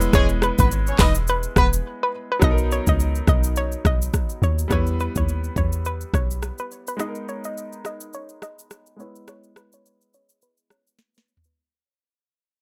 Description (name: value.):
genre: afrobeats.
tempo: 105 BPM.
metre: 4/4.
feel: swing 58% on 16ths.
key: unclear.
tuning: A4 = 440 Hz.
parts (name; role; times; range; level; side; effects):
bright concert grand piano; accompaniment; 0.0-11.6 s; F#3 to B4; -33 LUFS; equal; low-pass filter.
deep log drum bass; bass; 0.0-6.5 s; E1 to E2; -24 LUFS; equal; none.
afro-pop drum kit; drums; 0.0-11.6 s; handclaps, hi-hat, kick drum, rim click, shaker, snare drum, toms; -24 LUFS; equal; none.
hollow square pluck; melody; 0.1-11.6 s; B4 to D#5; -29 LUFS; equal; chorus, low-pass filter, delay.
warm horn section; second line; 0.1-1.7 s; G#3 to D#5; -28 LUFS; equal; none.
room: little or no reverb.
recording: none.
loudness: -22 LUFS.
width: mono.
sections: 0.0-2.4 A section; 2.4-11.6 B section.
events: break 1.8-2.4; fade-out 2.4-11.6; filter sweep 2.4-11.6; drum fill 11.0-11.6.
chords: 0.0 E; 2.4 Bmaj7; 4.7 Em; 7.0 G#madd9; 9.0 E.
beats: | 0.13 0.70 1.28 1.85 | 2.42 2.99 3.56 4.13 | 4.71 5.28 5.85 6.42 | 6.99 7.56 8.13 8.71 | 9.28 9.85 10.42 10.99.